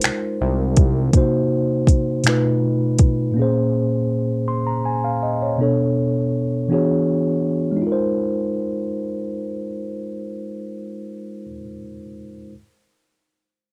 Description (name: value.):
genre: slow six-eight R&B.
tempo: 54 BPM (dotted quarters).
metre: 6/8.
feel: straight.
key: Ab major.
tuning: A4 = 440 Hz.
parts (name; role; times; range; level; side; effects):
mellow tine electric piano; accompaniment; 0.0-12.5 s; Bb2 to C6; -22 LUFS; equal; cassette tape.
fat analog bass; bass; 0.0-1.1 s; C2; -22 LUFS; equal; none.
smooth R&B drum kit; drums; 0.0-3.2 s; finger snaps, hi-hat, kick drum; -18 LUFS; equal; overdrive, cassette tape.
room: light reverb.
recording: home recording on cassette.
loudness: -20 LUFS.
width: mono.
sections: 0.0-7.8 A section; 7.8-10.0 B section.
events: none.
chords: 0.0 Ab6; 1.1 Cm7b5; 2.2 B7#11; 3.4 Bbm7; 5.6 Bm7; 6.7 E13; 7.8 Ab6.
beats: 0.03 | 1.14 2.25 | 3.36 4.47 | 5.58 6.69 | 7.80 8.92.